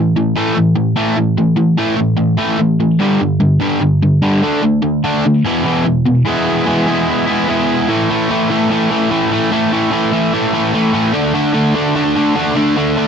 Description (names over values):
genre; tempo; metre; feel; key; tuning
rock; 148 BPM; 4/4; straight; unclear; A4 = 442 Hz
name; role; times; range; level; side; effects
crunchy overdriven guitar; solo; 0.0-13.1 s; E2 to E4; -12 LUFS; equal; none
room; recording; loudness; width
light reverb; dry, close 1970s-style studio recording; -12 LUFS; side -7 dB against mid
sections
0.0-6.3 A section; 6.3-7.9 B section; 7.9-13.1 C section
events
none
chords
0.0 A5; 3.0 G5; 4.4 D5; 5.5 E5; 6.3 E; 7.9 A5; 11.1 D5